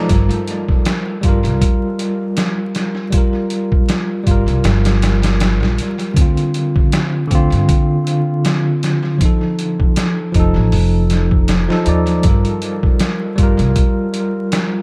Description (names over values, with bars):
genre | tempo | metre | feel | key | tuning
trip hop | 79 BPM | 4/4 | swing 56% on 16ths | G minor | A4 = 439 Hz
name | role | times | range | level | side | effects
bell-like tine electric piano | accompaniment | 0.0-14.8 s | D3 to D5 | -20 LUFS | equal | tremolo, vintage 12-bit sampler grit, tape echo
upright bass | bass | 0.1-13.7 s | F1 to G2 | -19 LUFS | equal | tube saturation
trip hop sampler-style drum kit | drums | 0.1-14.7 s | hi-hat, kick drum, snare drum | -19 LUFS | equal | tape echo
room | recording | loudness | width
light reverb | echo-heavy mix, vinyl crackle | -16 LUFS | mono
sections
0.0-14.8 A section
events
none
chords
0.1 Gm7; 6.2 Dm7; 9.2 F7; 12.2 Gm7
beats
| 0.09 0.85 1.61 2.37 | 3.13 3.89 4.65 5.41 | 6.17 6.93 7.69 8.45 | 9.21 9.97 10.72 11.48 | 12.24 13.00 13.76 14.52